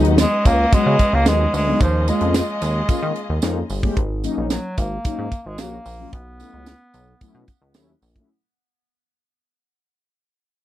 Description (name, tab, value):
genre	early-eighties boogie funk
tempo	111 BPM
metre	4/4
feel	straight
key	unclear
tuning	A4 = 440 Hz
part	mellow synth brass	accompaniment	0.0-8.3 s	Gb3 to G4	-23 LUFS	left 2 dB	chorus
part	warm studio string section	sustained chords	0.0-3.9 s	Db4 to Eb5	-30 LUFS	left 2 dB	none
part	chorused synth bass	bass	0.0-8.2 s	G1 to Eb3	-22 LUFS	equal	none
part	tight funk drum kit	drums	0.0-8.3 s	hi-hat, kick drum, snare drum	-18 LUFS	equal	none
part	clear bass clarinet	melody	0.2-7.7 s	F3 to Cb4	-22 LUFS	right 1 dB	none
part	tambourine	percussion	0.2-8.1 s	none	-36 LUFS	right 14 dB	none
room	little or no reverb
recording	dry, close 1970s-style studio recording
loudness	-17 LUFS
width	side -14 dB against mid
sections	0.0-8.3 A section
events	fade-out 0.0-8.3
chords	0.0 Db9sus4; 1.8 Eb9sus4; 4.0 Ab9sus4; 6.1 Cb9sus4